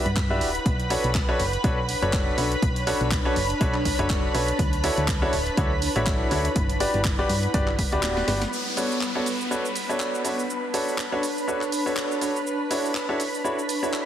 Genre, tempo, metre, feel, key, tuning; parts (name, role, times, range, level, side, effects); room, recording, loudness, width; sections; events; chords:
piano house; 122 BPM; 4/4; swing 56% on 16ths; B minor; A4 = 439 Hz
analog string pad; sustained chords; 0.0-14.1 s; B4 to B5; -31 LUFS; equal; ensemble chorus, sidechain pumping
bright grand piano; riff; 0.0-14.1 s; D4 to E5; -27 LUFS; equal; vintage 12-bit sampler grit, sidechain pumping, digital delay
granular cloud pad; texture; 0.0-14.1 s; B3 to A5; -30 LUFS; right 1 dB; built-in reverb, sidechain pumping
solid FM bass; bass; 0.1-8.5 s; D1 to G2; -28 LUFS; equal; sidechain pumping
house drum kit; drums; 0.1-14.1 s; handclaps, hi-hat, shaker, snare drum; -31 LUFS; right 2 dB
electronic kick drum; drums; 0.2-7.9 s; -26 LUFS; equal
downlifter; sound effects; 8.5-12.5 s; -35 LUFS; equal
moderate lush hall reverb, RT60 2.1 s; heavily compressed radio sound; -22 LUFS; side -10 dB against mid
0.0-8.5 A section; 8.5-14.1 B section
kick drops out 8.0-8.5; drum fill 8.0-8.5
0.0 Gmaj7; 0.7 Bm9; 4.6 Dmaj9; 6.6 Gmaj7; 8.5 Bm9; 12.5 Dmaj9